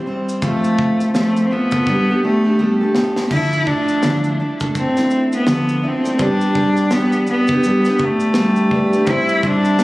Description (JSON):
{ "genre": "acoustic pop", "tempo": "83 BPM", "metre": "4/4", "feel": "swing 60% on 16ths", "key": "unclear", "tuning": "A4 = 440 Hz", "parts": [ { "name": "rich cello", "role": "melody", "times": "0.0-9.8 s", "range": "A3 to E4", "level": "-17 LUFS", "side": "equal", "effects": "tape echo" }, { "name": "picked steel-string acoustic guitar", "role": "accompaniment", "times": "0.0-9.8 s", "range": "D3 to C5", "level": "-19 LUFS", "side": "right 1 dB", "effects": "none" }, { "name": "modern studio drum kit", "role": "drums", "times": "0.3-9.8 s", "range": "crash cymbal, kick drum, shaker, snare drum", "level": "-23 LUFS", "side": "equal", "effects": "none" }, { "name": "felt-muted upright piano", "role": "accompaniment", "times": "3.3-9.8 s", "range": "F3 to E5", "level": "-28 LUFS", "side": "left 2 dB", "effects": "none" } ], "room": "light reverb, small room reverb", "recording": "recorded on a phone in the room, club reverb", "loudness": "-14 LUFS", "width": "side -18 dB against mid", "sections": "0.0-3.3 A section; 3.3-9.8 B section", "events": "drum fill 1.9-3.3", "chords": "0.4 F; 1.9 Gadd9; 3.3 Dmadd9; 6.2 G; 9.1 C/G" }